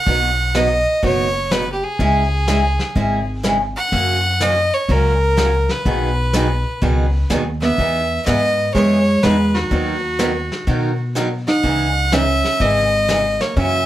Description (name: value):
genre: country, western swing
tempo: 124 BPM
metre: 4/4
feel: swing 66% on 8ths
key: B major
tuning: A4 = 436 Hz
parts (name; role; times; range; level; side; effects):
- clear fiddle; melody; 0.0-13.9 s; F#4 to F#5; -19 LUFS; equal; none
- picked steel-string acoustic guitar; accompaniment; 0.1-13.8 s; B2 to A#4; -22 LUFS; right 1 dB; none
- upright bass; bass; 0.1-13.9 s; F#1 to B2; -20 LUFS; equal; none
- vintage brush drum kit; drums; 0.1-13.9 s; brushed snare drum, hi-hat, kick drum, snare drum; -25 LUFS; left 1 dB; none
- archtop guitar, miked and amplified; second line; 7.6-13.9 s; D#3 to D#4; -20 LUFS; right 1 dB; none
room: moderate club reverb, RT60 0.5 s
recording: none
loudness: -15 LUFS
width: side -13 dB against mid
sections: 0.0-13.9 A section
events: none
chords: 0.1 B; 2.0 C#m; 3.9 F#; 5.9 B6; 7.8 Emaj7; 9.7 Bmaj7/D#; 11.6 C#madd9